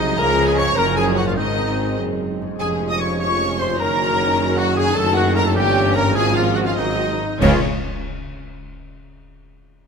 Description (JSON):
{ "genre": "classical, dramatic, fast romantic movement for symphony orchestra", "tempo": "91-104 BPM (dotted quarters)", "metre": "6/8", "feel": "rubato", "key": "Db major", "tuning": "A4 = 440 Hz", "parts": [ { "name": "rich symphonic violin section", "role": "melody", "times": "0.0-7.6 s", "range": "Db5 to Eb6", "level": "-26 LUFS", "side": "left 2 dB", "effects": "none" }, { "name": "dark clarinet", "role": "second line", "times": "0.0-7.6 s", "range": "Eb4 to Eb5", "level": "-29 LUFS", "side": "left 1 dB", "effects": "none" }, { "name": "mellow large flute ensemble", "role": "second line", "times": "0.0-7.6 s", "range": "Ab4 to Eb6", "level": "-28 LUFS", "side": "left 2 dB", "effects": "none" }, { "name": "warm oboe", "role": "second line", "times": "0.0-7.6 s", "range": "Eb4 to Eb5", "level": "-28 LUFS", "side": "right 2 dB", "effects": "none" }, { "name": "warm symphonic violin section", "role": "second line", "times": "0.0-7.6 s", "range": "Db4 to Eb5", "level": "-28 LUFS", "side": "left 2 dB", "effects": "none" }, { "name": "rich symphonic viola section", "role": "accompaniment", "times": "0.0-7.7 s", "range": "Eb3 to Db4", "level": "-28 LUFS", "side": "right 1 dB", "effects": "none" }, { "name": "dark trombone section", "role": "sustained chords", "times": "0.0-7.6 s", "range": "Ab2 to Bb3", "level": "-29 LUFS", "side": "right 5 dB", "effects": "none" }, { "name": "mellow French horn section", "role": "sustained chords", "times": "0.0-7.6 s", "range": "Ab3 to Bb4", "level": "-26 LUFS", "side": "left 5 dB", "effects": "none" }, { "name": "concert harp", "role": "arpeggios", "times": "0.0-7.7 s", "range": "F2 to F5", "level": "-30 LUFS", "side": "left 11 dB", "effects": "none" }, { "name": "mellow trumpet section", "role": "stabs", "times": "0.0-7.6 s", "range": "Eb4 to Eb5", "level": "-27 LUFS", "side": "equal", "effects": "none" }, { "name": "clear symphonic cello section", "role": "bass", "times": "0.0-7.7 s", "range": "F2 to Db3", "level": "-27 LUFS", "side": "right 3 dB", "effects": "none" }, { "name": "rich symphonic double bass section", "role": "bass", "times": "0.0-7.7 s", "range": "F1 to Db2", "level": "-25 LUFS", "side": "right 3 dB", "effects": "none" }, { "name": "warm tuba", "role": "bass", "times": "0.0-7.6 s", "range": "F1 to Db2", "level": "-28 LUFS", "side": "right 4 dB", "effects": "none" }, { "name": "timpani", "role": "percussion", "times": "0.2-0.7, 7.4-7.6 s", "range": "Db3", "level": "-28 LUFS", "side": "equal", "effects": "none" }, { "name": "clash cymbals and concert bass drum", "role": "percussion", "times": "7.4-8.2 s", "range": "none", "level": "-26 LUFS", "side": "equal", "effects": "none" } ], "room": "moderate concert hall reverb, RT60 2.3 s", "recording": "none", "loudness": "-16 LUFS", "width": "side -6 dB against mid", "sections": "0.0-7.4 A section; 7.4-8.7 B section", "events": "slowing down 4.4-7.4; band accent 7.4-7.8", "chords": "0.2 Db; 0.8 Gbmaj7; 1.4 Ab; 2.6 Db/F; 3.8 Ebm7/Gb; 5.0 Ebm7b5/Gb; 5.6 Gdim7; 6.2 Db/Ab; 6.8 Ab7; 7.4 Db" }